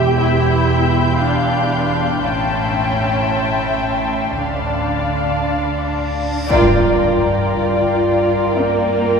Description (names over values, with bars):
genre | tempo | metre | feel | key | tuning
cinematic, suspense film score | 58 BPM | 4/4 | straight | unclear | A4 = 440 Hz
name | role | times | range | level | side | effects
muted studio violin section | melody | 0.0-9.2 s | G5 to A5 | -26 LUFS | left 3 dB | none
muted studio violin section | second line | 0.0-9.2 s | D5 to G5 | -22 LUFS | left 2 dB | none
muted studio viola section | accompaniment | 0.0-9.2 s | C#4 to Bb4 | -23 LUFS | equal | none
muted studio cello section | bass | 0.0-9.2 s | E2 to F4 | -20 LUFS | right 2 dB | none
muted studio double bass section | bass | 0.0-9.2 s | E1 to G2 | -22 LUFS | right 2 dB | none
concert harp | texture | 0.0-9.2 s | none | barely audible | none | none
muted studio violin section | texture | 0.0-5.9 s | B5 to G6 | -29 LUFS | left 2 dB | none
reverse cymbal and impact | sound effects | 6.2-9.2 s | none | -26 LUFS | left 1 dB | none
dark French horn section | sustained chords | 6.5-9.2 s | Bb4 to D5 | -19 LUFS | left 2 dB | none
room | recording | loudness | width
wet cathedral reverb, RT60 5.2 s | recorded in a church or concert hall | -15 LUFS | side -6 dB against mid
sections
0.0-6.5 A section; 6.5-9.2 B section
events
reverse cymbal 6.2; band accent 6.5-7.5; impact 6.5-9.2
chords
0.0 Em; 2.2 A7; 4.4 Dm; 6.5 Gm7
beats
0.18 1.21 | 2.24 3.29 4.36 5.44 | 6.51 7.54 8.57